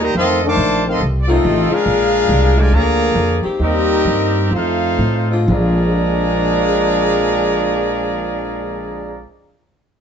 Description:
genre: jazz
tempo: 119-140 BPM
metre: 4/4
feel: swing 65% on 8ths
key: Bb major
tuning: A4 = 439 Hz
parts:
  - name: brilliant trumpet section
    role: melody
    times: 0.0-9.3 s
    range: C4 to D6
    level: -20 LUFS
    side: equal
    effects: none
  - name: dark trombone section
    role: second line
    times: 0.0-9.3 s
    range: Bb2 to F4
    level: -18 LUFS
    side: equal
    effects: none
  - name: upright bass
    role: bass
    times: 0.0-9.2 s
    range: A1 to A2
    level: -18 LUFS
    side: equal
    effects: none
  - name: warm saxophone section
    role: sustained chords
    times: 1.3-9.3 s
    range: D3 to Ab4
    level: -24 LUFS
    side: left 4 dB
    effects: none
room: moderate large studio reverb, RT60 0.9 s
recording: nothing above 8.0 kHz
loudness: -13 LUFS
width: side -7 dB against mid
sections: 0.0-5.5 A section; 5.5-9.5 B section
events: slowing down 1.9-5.5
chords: 0.2 F7; 1.9 Bb7; 3.6 Cm7; 4.5 F7; 5.5 Bb9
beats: | 0.15 0.58 1.01 1.44 | 1.86 2.29 2.72 3.16 | 3.61 4.06 4.53 5.00 | 5.50 6.00 6.50 7.01 | 7.51 8.01 8.52 9.02

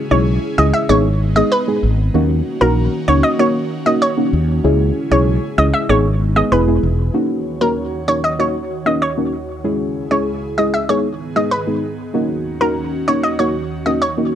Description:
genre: dancehall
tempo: 96 BPM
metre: 4/4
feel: straight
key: Eb phrygian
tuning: A4 = 443 Hz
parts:
  - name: deep mellow chord stab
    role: accompaniment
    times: 0.0-14.3 s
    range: Ab3 to Ab4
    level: -18 LUFS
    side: equal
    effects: chorus
  - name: airy breathy pad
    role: sustained chords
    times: 0.0-14.4 s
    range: Db2 to Db5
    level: -25 LUFS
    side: right 1 dB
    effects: chorus
  - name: analog pluck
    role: melody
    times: 0.1-14.4 s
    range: Bb4 to Fb5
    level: -18 LUFS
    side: right 1 dB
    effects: chorus
  - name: mellow fretless electric bass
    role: bass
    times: 0.1-7.1 s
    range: E1 to Eb2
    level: -16 LUFS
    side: equal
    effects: none
room: moderate studio reverb, RT60 0.6 s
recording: dark, warm production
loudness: -14 LUFS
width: side -10 dB against mid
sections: 0.0-7.1 A section; 7.1-14.4 B section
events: none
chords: 0.0 Dbm; 0.9 Abm; 2.1 Ebm7; 4.6 Dbm; 5.9 Abm; 6.5 E; 7.1 Ebm7; 9.6 Dbm; 10.9 Abm; 12.1 Ebm7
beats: 0.27 0.89 1.52 | 2.14 2.77 3.39 4.02 | 4.64 5.27 5.89 6.52 | 7.14 7.77 8.39 9.02 | 9.64 10.27 10.89 11.52 | 12.14 12.77 13.39 14.02

